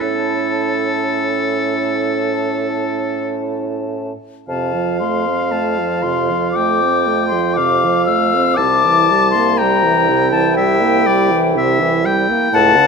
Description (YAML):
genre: classical, slow romantic movement for wind quintet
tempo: 53-62 BPM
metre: 4/4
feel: rubato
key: A major, F major from 4.5 s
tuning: A4 = 440 Hz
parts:
  - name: concert flute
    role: melody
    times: 0.0-12.9 s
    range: G5 to E6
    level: -18 LUFS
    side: left 8 dB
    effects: none
  - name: bright oboe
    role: second line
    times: 0.0-12.9 s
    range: A4 to A5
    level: -20 LUFS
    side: left 3 dB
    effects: none
  - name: clear French horn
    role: accompaniment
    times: 0.0-12.9 s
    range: A2 to C#4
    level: -22 LUFS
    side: right 2 dB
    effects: none
  - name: mellow clarinet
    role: accompaniment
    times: 0.0-12.9 s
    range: E4 to F4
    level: -22 LUFS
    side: right 10 dB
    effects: none
  - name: warm bassoon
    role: bass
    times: 0.0-12.9 s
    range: C2 to A2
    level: -21 LUFS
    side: right 2 dB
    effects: none
room: moderate recital hall reverb, RT60 1.7 s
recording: none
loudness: -14 LUFS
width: side -5 dB against mid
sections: 0.0-4.5 A section; 4.5-12.9 B section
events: none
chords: 0.0 A; 4.5 F; 8.6 C7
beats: | 0.02 1.15 2.26 3.38 | 4.49 5.53 6.56 7.57 | 8.58 9.59 10.57 11.57 | 12.56